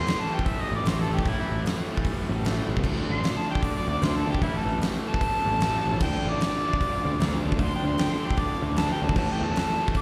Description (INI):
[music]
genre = blues rock power trio and southern rock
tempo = 152 BPM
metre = 4/4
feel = swing 64% on 8ths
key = A minor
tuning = A4 = 438 Hz
[part]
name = mellow harmonica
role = melody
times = 0.0-10.0 s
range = E4 to D6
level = -32 LUFS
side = equal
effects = overdrive, slapback echo
[part]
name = bright tonewheel organ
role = sustained chords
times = 0.0-10.0 s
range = A3 to G5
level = -44 LUFS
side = equal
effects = none
[part]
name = cranked stack guitar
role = riff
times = 0.0-10.0 s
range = A2 to D4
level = -34 LUFS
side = equal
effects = overdrive, slapback echo
[part]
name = fuzz picked electric bass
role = bass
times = 0.0-9.5 s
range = A1 to E2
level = -30 LUFS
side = equal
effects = overdrive
[part]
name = huge arena drum kit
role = drums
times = 0.1-10.0 s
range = crash cymbal, hi-hat, kick drum, snare drum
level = -30 LUFS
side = equal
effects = none
[sound]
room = small room ambience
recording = live gig heard through the venue's PA, recital hall reverb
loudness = -26 LUFS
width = mono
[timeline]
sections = 0.0-10.0 A section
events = harmonica solo 0.0-10.0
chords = 0.0 Am7; 2.8 Dm7; 4.4 Am7; 6.0 Dm7; 9.2 Am7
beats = 0.07 0.47 0.86 | 1.26 1.66 2.06 2.45 | 2.85 3.24 3.64 4.04 | 4.43 4.83 5.22 5.62 | 6.01 6.41 6.80 7.19 | 7.59 7.98 8.38 8.77 | 9.17 9.56 9.95